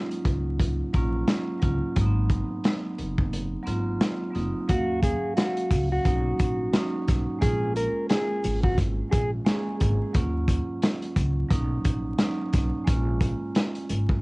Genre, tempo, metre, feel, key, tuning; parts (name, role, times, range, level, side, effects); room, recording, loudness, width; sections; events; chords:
hip hop, boom-bap hip-hop; 88 BPM; 4/4; swing 58% on 16ths; Eb minor; A4 = 436 Hz
vibraphone with medium mallets; accompaniment; 0.0-14.2 s; Gb3 to F5; -30 LUFS; right 2 dB; high-pass filter, low-pass filter, cassette tape
crunchy breakbeat drum kit; drums; 0.1-14.2 s; hi-hat, kick drum, snare drum; -26 LUFS; equal; cassette tape
upright bass; bass; 0.3-14.2 s; Gb1 to Eb2; -27 LUFS; equal
mellow electric guitar; melody; 4.7-9.3 s; Gb4 to Bb4; -28 LUFS; equal; high-pass filter, low-pass filter, cassette tape, tape echo
sleigh bells; percussion; 4.7-14.1 s; -43 LUFS; left 3 dB
little or no reverb; home recording on cassette, vinyl crackle, nothing above 10.4 kHz; -23 LUFS; side -25 dB against mid
0.0-4.7 A section; 4.7-14.2 B section
break 3.3-4.7
0.0 Ebm7; 2.0 Ab7; 4.7 Ebm9; 6.1 Bmaj9; 7.4 Bbm7; 10.1 Ebm9; 11.5 Bmaj9; 12.9 Bbm7